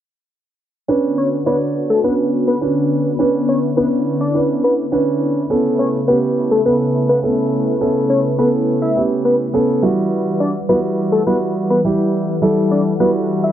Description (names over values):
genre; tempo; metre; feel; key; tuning
pop; 104 BPM; 4/4; straight; B minor; A4 = 436 Hz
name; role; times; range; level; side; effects
warm concert grand piano; accompaniment; 0.9-13.5 s; G3 to D5; -17 LUFS; right 2 dB; none
lush unison pad; sustained chords; 0.9-13.5 s; C#3 to F#5; -21 LUFS; left 2 dB; chorus, phaser
fat analog lead; melody; 1.2-13.5 s; A4 to E5; -19 LUFS; left 2 dB; chorus
room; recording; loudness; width
light reverb, studio reverb; dry, close 1970s-style studio recording, low-pass filter; -14 LUFS; side -10 dB against mid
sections
0.9-13.5 A section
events
filter sweep 0.9-13.5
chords
0.9 Bmadd9; 5.5 Aadd9; 9.8 Emadd9